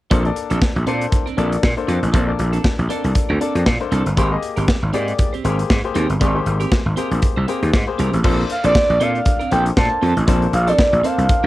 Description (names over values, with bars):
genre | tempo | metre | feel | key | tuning
early-eighties boogie funk | 118 BPM | 4/4 | swing 56% on 16ths | Bb major | A4 = 440 Hz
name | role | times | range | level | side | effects
clear baby grand piano | accompaniment | 0.1-11.4 s | Bb3 to Eb5 | -24 LUFS | left 6 dB | cassette tape
clean electric guitar | riff | 0.1-11.5 s | C4 to C5 | -26 LUFS | right 8 dB | lush chorus, cassette tape
gritty slap bass | bass | 0.1-11.5 s | G1 to Bb2 | -18 LUFS | equal | overdrive
modern studio drum kit | drums | 0.1-11.4 s | crash cymbal, hi-hat, kick drum, snare drum | -19 LUFS | equal | cassette tape
expressive synth lead | melody | 8.5-11.5 s | D5 to A5 | -18 LUFS | right 1 dB | chorus, cassette tape
room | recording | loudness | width
light reverb | home recording on cassette | -15 LUFS | side -16 dB against mid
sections
0.1-8.2 A section; 8.2-11.5 B section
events
none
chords
0.1 Bbmaj9; 4.2 Abmaj9; 8.2 Bbmaj9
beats
| 0.11 0.61 1.12 1.63 | 2.14 2.65 3.16 3.67 | 4.17 4.68 5.19 5.70 | 6.21 6.72 7.22 7.73 | 8.24 8.75 9.26 9.77 | 10.28 10.79 11.29